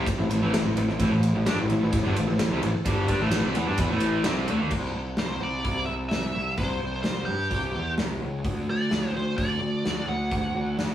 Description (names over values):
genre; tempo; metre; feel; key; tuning
classic rock; 129 BPM; 4/4; straight; A dorian; A4 = 438 Hz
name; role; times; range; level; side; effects
string machine, violins; sustained chords; 0.0-4.7 s; C4 to C5; -38 LUFS; equal; none
distorted electric guitar; riff; 0.0-4.7 s; G2 to D4; -29 LUFS; right 4 dB; overdrive
overdriven electric guitar; riff; 0.0-4.7 s; G2 to D4; -27 LUFS; left 3 dB; none
fuzz picked electric bass; bass; 0.0-10.9 s; G1 to G2; -28 LUFS; equal; overdrive
gated 80s drum kit; drums; 0.1-10.9 s; crash cymbal, hi-hat, kick drum, ride cymbal, snare drum; -29 LUFS; equal; none
nasal lead guitar with a parked wah; melody; 5.2-10.9 s; G4 to F#5; -30 LUFS; equal; overdrive
room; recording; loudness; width
wet small room reverb, RT60 0.5 s; rough rehearsal-room recording, tube saturation, studio reverb; -23 LUFS; side -11 dB against mid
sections
0.0-4.7 A section; 4.7-10.9 B section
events
none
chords
0.0 Am; 4.7 N.C.; 8.5 D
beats
0.06 0.52 | 0.99 1.46 1.92 2.39 | 2.86 3.32 3.79 4.25 | 4.72 5.19 5.66 6.12 | 6.59 7.05 7.52 7.99 | 8.45 8.92 9.39 9.85 | 10.32 10.79